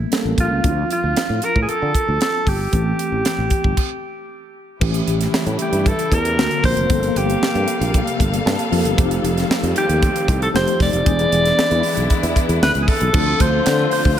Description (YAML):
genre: polished 1980s jazz-funk pop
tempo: 115 BPM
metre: 4/4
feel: straight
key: D minor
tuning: A4 = 440 Hz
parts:
  - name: tine electric piano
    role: accompaniment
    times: 0.0-14.2 s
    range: D3 to A5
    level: -23 LUFS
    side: left 2 dB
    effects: overdrive, fast stereo tremolo, analog chorus
  - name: sustaining fretless electric bass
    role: bass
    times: 0.0-14.1 s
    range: E1 to D3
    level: -21 LUFS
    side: equal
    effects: none
  - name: tight funk drum kit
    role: drums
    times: 0.1-14.2 s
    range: crash cymbal, hi-hat, kick drum, snare drum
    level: -20 LUFS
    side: right 1 dB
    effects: none
  - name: breathy alto saxophone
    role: melody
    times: 0.4-14.2 s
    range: F4 to D5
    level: -21 LUFS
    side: equal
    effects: ping-pong delay
  - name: warm studio string section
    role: sustained chords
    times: 4.8-14.2 s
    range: C3 to E#5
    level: -26 LUFS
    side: left 1 dB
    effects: none
room: moderate plate reverb, RT60 2.2 s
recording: dreamy mix soaked in reverb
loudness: -15 LUFS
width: side -10 dB against mid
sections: 0.0-4.8 A section; 4.8-13.1 B section; 13.1-14.2 C section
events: stop 3.8-4.8; tine electric piano fill 8.2-9.0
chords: 0.0 A7b9; 0.6 Dm7; 2.7 Am7; 4.8 A7; 6.4 D7alt; 6.9 Gm11; 9.0 F9; 11.1 E7; 13.1 Dm7